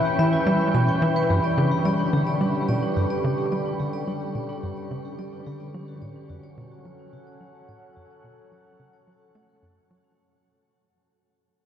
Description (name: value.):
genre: ambient, sequencer-driven space music.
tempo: 108 BPM.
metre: 4/4.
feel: straight.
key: unclear.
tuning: A4 = 439 Hz.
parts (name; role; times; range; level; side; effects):
evolving wavetable pad; sustained chords; 0.0-10.2 s; D3 to G5; -26 LUFS; equal; phaser, built-in reverb, shimmer reverb.
vibraphone with hard mallets; arpeggios; 0.0-10.1 s; C#4 to B5; -33 LUFS; left 2 dB; auto-pan, tape echo, shimmer reverb.
wind-like tuned noise texture; texture; 0.0-10.2 s; C#4 to C#6; -34 LUFS; equal; built-in reverb, shimmer reverb.
tight sequencer bass; riff; 0.2-10.1 s; F#2 to A3; -25 LUFS; equal; tape echo, shimmer reverb.
room: wet huge ambient reverb, RT60 7.7 s.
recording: worn, warbling old tape, cassette tape, warbly pitch drift.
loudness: -21 LUFS.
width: side -9 dB against mid.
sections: 0.0-10.2 A section.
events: fade-out on vibraphone 0.0-10.2; fade-out 0.0-10.2; filter sweep on analog synth bass 0.0-10.2.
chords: 0.0 Em; 1.3 G; 5.7 F#m.